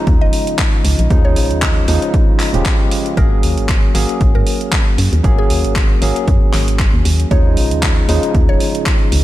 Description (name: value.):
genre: deep house.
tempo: 116 BPM.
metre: 4/4.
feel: swing 56% on 16ths.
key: unclear.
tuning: A4 = 441 Hz.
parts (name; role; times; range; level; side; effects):
barky tine electric piano; stabs; 0.0-9.2 s; C#3 to G#4; -19 LUFS; equal; overdrive, medium stereo tremolo, sidechain pumping, low-pass filter, analog delay.
organ-like FM bass; bass; 0.1-9.2 s; D#1 to G#2; -16 LUFS; equal; sidechain pumping.
electronic kick drum; drums; 0.1-9.0 s; none; -14 LUFS; equal; none.
house drum kit; drums; 0.1-9.2 s; handclaps, hi-hat; -21 LUFS; equal; none.
mallet-like synth pluck; melody; 0.2-8.7 s; G#4 to D#5; -26 LUFS; left 1 dB; chorus, phaser, ping-pong delay.
room: light reverb, digital ambience.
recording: none.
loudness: -12 LUFS.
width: side -15 dB against mid.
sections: 0.0-9.2 A section.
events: none.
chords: 0.0 D#9sus4; 3.2 G#9sus4; 7.3 D#9sus4.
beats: 0.07 0.59 | 1.10 1.62 2.14 2.66 | 3.17 3.69 4.21 4.72 | 5.24 5.76 6.28 6.79 | 7.31 7.83 8.35 8.86.